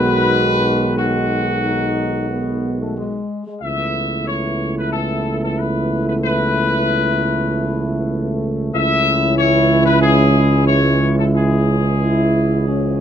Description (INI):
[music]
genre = classical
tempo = 92 BPM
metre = 4/4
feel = straight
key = unclear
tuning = A4 = 439 Hz
[part]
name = mellow trumpet section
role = melody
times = 0.0-13.0 s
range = F#4 to E5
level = -20 LUFS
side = left 4 dB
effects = none
[part]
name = mellow French horn section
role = sustained chords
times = 0.0-13.0 s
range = G#3 to F#4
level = -21 LUFS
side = left 1 dB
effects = none
[part]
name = mellow trombone section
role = sustained chords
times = 0.0-13.0 s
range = D#3 to A3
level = -23 LUFS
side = right 1 dB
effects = none
[part]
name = mellow tuba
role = bass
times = 0.0-13.0 s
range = B1 to C#2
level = -19 LUFS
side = right 3 dB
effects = none
[sound]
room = light reverb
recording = close, detailed microphones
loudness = -15 LUFS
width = side -9 dB against mid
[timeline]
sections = 0.0-13.0 A section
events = none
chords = 0.0 B6; 3.6 Aadd9/C#; 8.7 C#m